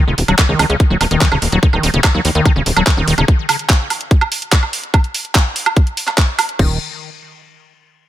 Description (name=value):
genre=psychedelic trance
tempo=145 BPM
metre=4/4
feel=straight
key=Eb minor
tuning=A4 = 441 Hz
part: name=liquid acid bass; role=riff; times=0.0-3.2, 6.6-6.8 s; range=Db3 to Gb3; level=-18 LUFS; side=left 1 dB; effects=chorus, auto-pan, sidechain pumping, ping-pong delay
part: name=tight sequencer bass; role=bass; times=0.1-3.2, 6.6-6.8 s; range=Eb1 to Eb2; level=-17 LUFS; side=equal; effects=none
part: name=garage drum kit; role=drums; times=0.2-6.7 s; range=crash cymbal, handclaps, hi-hat, woodblock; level=-17 LUFS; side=right 2 dB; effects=overdrive
part: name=electronic kick drum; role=drums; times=0.4-6.7 s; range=none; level=-12 LUFS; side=equal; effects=overdrive
room=little or no reverb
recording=none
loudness=-12 LUFS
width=side -13 dB against mid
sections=0.0-6.6 A section; 6.6-8.1 B section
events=none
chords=none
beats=0.39 0.80 1.21 | 1.63 2.04 2.46 2.87 | 3.28 3.70 4.11 4.52 | 4.94 5.35 5.76 6.18 | 6.59